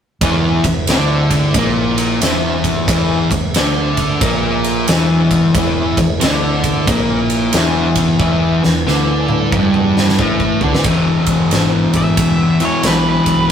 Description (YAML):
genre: blues rock power trio and southern rock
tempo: 90 BPM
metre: 4/4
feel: swing 64% on 8ths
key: E mixolydian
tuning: A4 = 439 Hz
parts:
  - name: tonewheel organ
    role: sustained chords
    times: 0.2-10.8 s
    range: E4 to G#5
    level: -26 LUFS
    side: right 1 dB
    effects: slow rotary speaker, chorus vibrato
  - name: fuzz guitar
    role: riff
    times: 0.2-13.5 s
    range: E2 to D4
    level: -14 LUFS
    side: left 1 dB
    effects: distortion
  - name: vintage muted fingered electric bass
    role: bass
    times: 0.2-13.5 s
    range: E1 to D2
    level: -24 LUFS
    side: right 1 dB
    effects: none
  - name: big rock drum kit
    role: drums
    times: 0.2-13.5 s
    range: kick drum, ride cymbal, snare drum, toms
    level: -18 LUFS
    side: right 1 dB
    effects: none
  - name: octave-fuzz lead guitar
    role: melody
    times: 12.0-13.5 s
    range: B4 to E5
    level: -19 LUFS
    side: right 1 dB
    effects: distortion
room: light reverb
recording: rough rehearsal-room recording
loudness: -12 LUFS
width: side -8 dB against mid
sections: 0.2-10.9 A section; 10.9-13.5 B section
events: drum fill 8.2-10.9; lead electric guitar solo 10.9-13.5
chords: 0.2 E